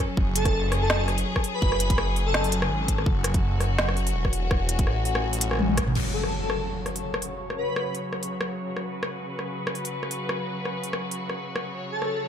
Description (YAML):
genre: half-time drum and bass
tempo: 166 BPM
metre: 4/4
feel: swing 55% on 16ths, half-time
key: F# minor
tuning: A4 = 439 Hz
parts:
  - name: bright symphonic string section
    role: sustained chords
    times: 0.0-12.3 s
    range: C#3 to C#5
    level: -31 LUFS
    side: left 1 dB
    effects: sidechain pumping, low-pass filter
  - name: phased detuned saw bass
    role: bass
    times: 0.2-5.9 s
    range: E1 to A1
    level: -26 LUFS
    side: equal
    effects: phaser
  - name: electronic kick drum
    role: drums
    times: 0.2-5.9 s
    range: none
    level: -25 LUFS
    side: equal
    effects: none
  - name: airy dreamy lead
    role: melody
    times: 0.4-2.5, 6.1-7.9, 11.9-12.2 s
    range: A4 to B4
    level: -30 LUFS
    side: left 2 dB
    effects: chorus, ping-pong delay
  - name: organic electronic drum kit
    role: drums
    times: 0.4-12.1 s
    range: crash cymbal, hi-hat, rim click, snare drum, toms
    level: -28 LUFS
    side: equal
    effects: none
  - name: impact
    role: sound effects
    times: 6.0-7.4 s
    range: none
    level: -33 LUFS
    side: equal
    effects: none
room: light reverb, digital ambience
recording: none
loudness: -24 LUFS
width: side -9 dB against mid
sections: 0.0-6.0 A section; 6.0-12.3 B section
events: drop 0.0-6.0; drum fill 5.6-6.0; band accent 5.8; impact 6.0-7.4; filter sweep on string section 6.0-12.3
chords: 0.0 F#5